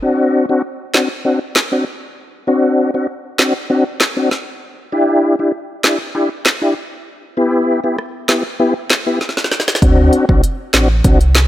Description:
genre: dancehall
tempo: 98 BPM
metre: 4/4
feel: straight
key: unclear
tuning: A4 = 444 Hz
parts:
  - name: tonewheel organ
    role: accompaniment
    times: 0.0-11.2 s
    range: B3 to G4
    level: -15 LUFS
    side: left 1 dB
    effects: chorus vibrato, slow rotary speaker
  - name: afro-pop drum kit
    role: drums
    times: 0.9-11.5 s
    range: handclaps, hi-hat, kick drum, rim click, snare drum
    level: -15 LUFS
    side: equal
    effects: none
  - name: sub bass with octave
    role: bass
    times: 9.8-11.5 s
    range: A1 to D2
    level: -13 LUFS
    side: equal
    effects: none
room: light reverb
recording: none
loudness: -13 LUFS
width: side -14 dB against mid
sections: 0.0-9.8 A section; 9.8-11.5 B section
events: drum fill 9.2-9.8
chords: 0.0 D7; 4.9 Em7; 7.4 G6; 9.8 D7

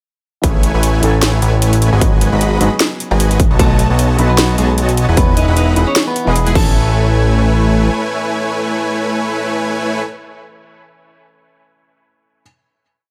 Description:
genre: future bass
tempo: 152 BPM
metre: 4/4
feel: swing 55% on 16ths, half-time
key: A lydian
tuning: A4 = 440 Hz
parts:
  - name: felt-muted upright piano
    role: accompaniment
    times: 0.4-12.4 s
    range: E3 to D#5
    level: -26 LUFS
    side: equal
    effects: none
  - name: dense compressed supersaw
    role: riff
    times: 0.4-10.0 s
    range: G#3 to B5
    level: -21 LUFS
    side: equal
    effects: sidechain pumping, dub echo
  - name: fat analog bass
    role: bass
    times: 0.4-7.9 s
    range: E1 to B1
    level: -16 LUFS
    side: equal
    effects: tube saturation, sidechain pumping
  - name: electronic kick drum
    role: drums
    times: 0.4-6.6 s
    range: none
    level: -15 LUFS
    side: equal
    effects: none
  - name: trap drum kit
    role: drums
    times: 0.4-6.6 s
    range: crash cymbal, hi-hat, snare drum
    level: -20 LUFS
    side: equal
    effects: none
  - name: clean electric guitar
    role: melody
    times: 3.6-10.0 s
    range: G#3 to D#5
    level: -24 LUFS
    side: equal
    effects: spring reverb, sidechain pumping, digital delay
room: little or no reverb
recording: none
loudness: -14 LUFS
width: mono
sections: 0.4-6.8 drop; 6.8-9.9 final hit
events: drop 0.4-6.8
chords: 0.4 Amaj7; 2.0 G#m7; 3.4 B7; 5.2 Emaj7; 6.6 Amaj7

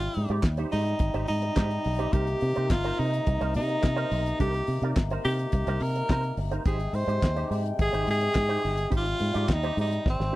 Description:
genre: disco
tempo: 106 BPM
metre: 4/4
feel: straight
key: unclear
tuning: A4 = 439 Hz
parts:
  - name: breathy tenor saxophone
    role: melody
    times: 0.0-10.4 s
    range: C4 to C5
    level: -29 LUFS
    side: equal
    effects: none
  - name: electric guitar with an envelope filter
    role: accompaniment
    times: 0.0-10.4 s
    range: Eb4 to D5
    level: -35 LUFS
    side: right 5 dB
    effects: ensemble chorus
  - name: hand-pumped harmonium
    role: sustained chords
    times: 0.0-10.4 s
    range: C3 to G5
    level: -36 LUFS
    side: left 3 dB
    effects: none
  - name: fingered electric bass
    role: bass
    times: 0.0-10.3 s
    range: G1 to C3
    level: -28 LUFS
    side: equal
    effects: none
  - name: damped 70s drum kit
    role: drums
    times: 0.0-10.3 s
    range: handclaps, hi-hat, kick drum, snare drum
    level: -26 LUFS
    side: equal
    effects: none
room: small room reverb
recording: dry, close 1970s-style studio recording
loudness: -24 LUFS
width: side -17 dB against mid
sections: 0.0-10.4 A section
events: drum fill 10.1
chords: 0.0 Abmaj7; 2.1 Cm7; 6.7 Abmaj7

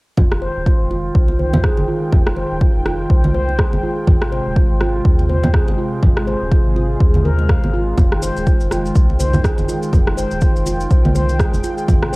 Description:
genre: afro house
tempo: 123 BPM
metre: 4/4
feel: swing 58% on 16ths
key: F minor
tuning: A4 = 441 Hz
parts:
  - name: warm analog pad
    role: sustained chords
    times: 0.2-12.2 s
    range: C3 to G5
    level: -25 LUFS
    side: left 1 dB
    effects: chorus, sidechain pumping, cassette tape
  - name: handpan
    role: arpeggios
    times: 0.2-12.2 s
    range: F4 to F5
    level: -23 LUFS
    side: right 1 dB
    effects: sidechain pumping, low-pass filter, cassette tape, tape echo
  - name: round analog bass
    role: bass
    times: 0.2-12.2 s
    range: Eb1 to Eb2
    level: -21 LUFS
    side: equal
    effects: tube saturation, sidechain pumping
  - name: electronic kick drum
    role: drums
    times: 0.2-12.0 s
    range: none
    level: -15 LUFS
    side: equal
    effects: overdrive, cassette tape
  - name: congas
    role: percussion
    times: 0.2-12.2 s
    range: none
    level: -21 LUFS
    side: right 1 dB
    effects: none
  - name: electronic rim click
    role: drums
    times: 0.3-12.1 s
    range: none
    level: -25 LUFS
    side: equal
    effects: overdrive, cassette tape
  - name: maracas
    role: percussion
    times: 8.0-12.2 s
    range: none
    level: -34 LUFS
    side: left 1 dB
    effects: none
room: studio reverb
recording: home recording on cassette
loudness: -14 LUFS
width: side -23 dB against mid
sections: 0.2-12.2 A section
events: filter sweep on analog synth bass 0.2-12.2; filter sweep on handpan 0.2-12.2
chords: 0.2 Fm9; 4.1 Abmaj7; 8.0 Fm9

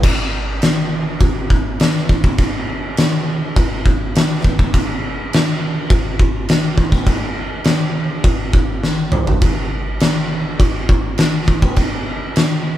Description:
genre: metal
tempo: 102 BPM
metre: 4/4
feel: straight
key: none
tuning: none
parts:
  - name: oversized low-tuned drum kit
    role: drums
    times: 0.0-12.5 s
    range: crash cymbal, kick drum, snare drum, toms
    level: -14 LUFS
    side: equal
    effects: none
room: light reverb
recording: band playing live in one room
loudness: -14 LUFS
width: side -13 dB against mid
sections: 0.0-12.8 A section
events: drum fill 8.8-9.4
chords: none

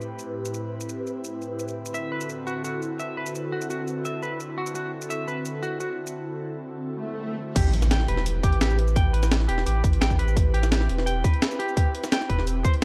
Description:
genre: liquid drum and bass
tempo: 171 BPM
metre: 4/4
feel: straight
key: A dorian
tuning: A4 = 439 Hz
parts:
  - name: airy breathy pad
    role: sustained chords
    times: 0.0-12.8 s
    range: A2 to B4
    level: -34 LUFS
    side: equal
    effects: chorus, phaser, sidechain pumping
  - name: breakbeat sampler-style drum kit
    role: drums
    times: 0.0-12.8 s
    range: crash cymbal, hi-hat, shaker, snare drum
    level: -31 LUFS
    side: equal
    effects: small room ambience
  - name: semi-hollow electric guitar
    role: arpeggios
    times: 1.9-12.8 s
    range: F#4 to G5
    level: -34 LUFS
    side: equal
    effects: harmonic tremolo, dub echo
  - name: swell and impact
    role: sound effects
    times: 7.0-9.0 s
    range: none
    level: -35 LUFS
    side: equal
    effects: none
  - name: warm sub bass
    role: bass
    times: 7.6-12.8 s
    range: E1 to A1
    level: -26 LUFS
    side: equal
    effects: none
  - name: electronic kick drum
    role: drums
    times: 7.6-12.7 s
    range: none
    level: -24 LUFS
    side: equal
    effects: small room ambience
room: light reverb, digital ambience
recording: dark, warm production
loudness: -26 LUFS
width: mono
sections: 0.0-7.6 A section; 7.6-12.8 B section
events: break 6.2-7.6; swell 7.0-7.6; drop 7.6-12.8; impact 7.6-9.0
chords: 0.0 Am9; 1.8 D13; 7.6 Am9

